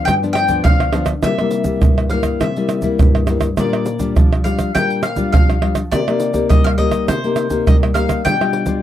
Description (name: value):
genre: samba and choro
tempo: 103 BPM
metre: 4/4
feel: straight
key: unclear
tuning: A4 = 440 Hz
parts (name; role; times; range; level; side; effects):
- mandolin; second line; 0.0-8.8 s; C5 to G5; -21 LUFS; left 2 dB; none
- nylon-string guitar; accompaniment; 0.0-8.8 s; G2 to G4; -18 LUFS; left 4 dB; none
- egg shaker, surdo, pandeiro and tamborim; percussion; 0.1-8.8 s; none; -16 LUFS; right 2 dB; none
room: light reverb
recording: dry, close 1970s-style studio recording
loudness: -14 LUFS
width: side -11 dB against mid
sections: 0.0-8.8 A section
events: mandolin solo 0.0-8.8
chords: 0.0 G7; 1.2 C7; 3.6 Bb6; 5.9 Cm7; 8.3 G7/B